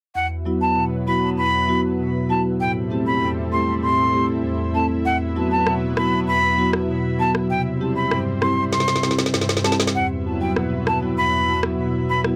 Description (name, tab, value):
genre	dancehall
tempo	98 BPM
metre	4/4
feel	straight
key	E minor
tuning	A4 = 443 Hz
part	jazz flute	melody	0.2-12.2 s	F#5 to C6	-24 LUFS	equal	digital delay
part	marimba with medium mallets	accompaniment	0.2-12.4 s	E2 to A4	-24 LUFS	equal	none
part	lush unison pad	sustained chords	0.4-12.4 s	F#3 to E5	-32 LUFS	equal	chorus
part	electronic rim click and snare drum	drums	5.7-12.4 s	none	-24 LUFS	equal	none
room	moderate studio ambience, RT60 0.5 s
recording	none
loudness	-21 LUFS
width	mono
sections	0.2-9.9 A section; 9.9-12.4 B section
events	drum fill 8.7-9.9; kick muted 9.9-12.4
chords	0.2 Esus2; 2.6 Am7; 5.1 Esus2; 7.5 C; 9.9 Esus2